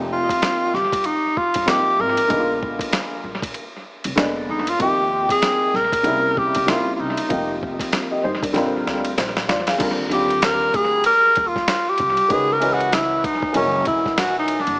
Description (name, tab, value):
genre	hip hop, jazz-hop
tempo	96 BPM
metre	4/4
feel	swing 59% on 16ths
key	Eb major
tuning	A4 = 437 Hz
part	dark upright piano	accompaniment	0.0-14.6 s	C3 to G5	-23 LUFS	equal	analog delay
part	upright bass	bass	0.0-14.8 s	Fb1 to Fb2	-32 LUFS	equal	none
part	breathy alto saxophone	melody	0.1-14.8 s	Db4 to Bb4	-18 LUFS	equal	analog delay
part	boom bap sampler-style drum kit	drums	0.3-14.8 s	crash cymbal, hi-hat, kick drum, ride cymbal, snare drum	-25 LUFS	equal	analog delay
room	moderate echo chamber reverb, RT60 1.7 s, small room ambience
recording	echo-heavy mix, small speaker sound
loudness	-17 LUFS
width	side -27 dB against mid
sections	0.0-9.8 A section; 9.8-14.8 B section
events	drum fill 8.6-9.8; alto saxophone solo 9.8-14.8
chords	0.0 F9sus4; 2.3 Bb7b9; 4.8 Eb69; 6.1 C7b9; 7.3 F9sus4; 8.6 Bb69; 9.8 Ebmaj9; 12.3 Dbm7; 13.6 Gb9